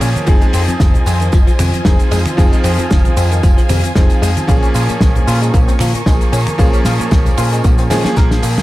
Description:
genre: nu-disco, nu disco.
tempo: 114 BPM.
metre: 4/4.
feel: swing 55% on 16ths.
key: Bb minor.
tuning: A4 = 440 Hz.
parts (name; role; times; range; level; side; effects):
bright electric grand piano; accompaniment; 0.0-8.6 s; F3 to Ab4; -20 LUFS; right 1 dB; sidechain pumping, dub echo.
muted studio string section; sustained chords; 0.0-8.6 s; Bb3 to Db6; -25 LUFS; equal; sidechain pumping.
direct-recorded clean electric guitar; riff; 0.0-8.5 s; F2 to Bb4; -23 LUFS; left 2 dB; lush chorus.
deep dub picked electric bass; bass; 0.0-8.6 s; F1 to Bb2; -16 LUFS; equal; none.
damped 70s drum kit; drums; 0.0-8.6 s; finger snaps, hi-hat, ride cymbal, shaker, snare drum; -21 LUFS; left 1 dB; studio reverb.
tambourine and congas; percussion; 0.0-8.6 s; none; -26 LUFS; right 1 dB; none.
electronic kick drum; drums; 0.3-8.3 s; none; -12 LUFS; equal; overdrive, studio reverb.
room: small room reverb.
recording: dark, warm production.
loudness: -10 LUFS.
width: side -17 dB against mid.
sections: 0.0-8.6 A section.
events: drum fill 7.9-8.6.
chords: 0.3 Fm7; 4.5 Bbm7.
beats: | 0.28 0.80 1.33 1.85 | 2.38 2.91 3.43 3.96 | 4.49 5.01 5.54 6.07 | 6.59 7.12 7.64 8.17.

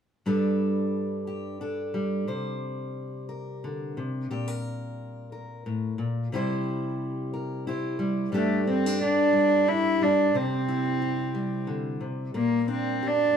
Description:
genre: acoustic folk duo or small band.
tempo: 89 BPM.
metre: 3/4.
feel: straight.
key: G dorian.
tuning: A4 = 440 Hz.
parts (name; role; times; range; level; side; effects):
fingerpicked steel-string acoustic guitar; accompaniment; 0.3-13.4 s; G2 to C5; -28 LUFS; equal; none.
warm cello; melody; 8.4-13.4 s; A3 to E4; -23 LUFS; right 1 dB; none.
room: wet studio reverb, RT60 0.8 s.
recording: band playing live in one room.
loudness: -25 LUFS.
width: side -7 dB against mid.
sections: 0.3-8.3 A section; 8.3-13.4 B section.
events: none.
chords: 0.3 Gsus2; 2.3 C5; 4.3 Gm/Bb; 6.3 C; 8.3 Gsus2; 10.3 C; 12.4 Gm/Bb.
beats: | 0.26 0.93 1.60 | 2.27 2.95 3.62 | 4.29 4.96 5.63 | 6.31 6.98 7.65 | 8.32 8.99 9.66 | 10.34 11.01 11.68 | 12.35 13.03.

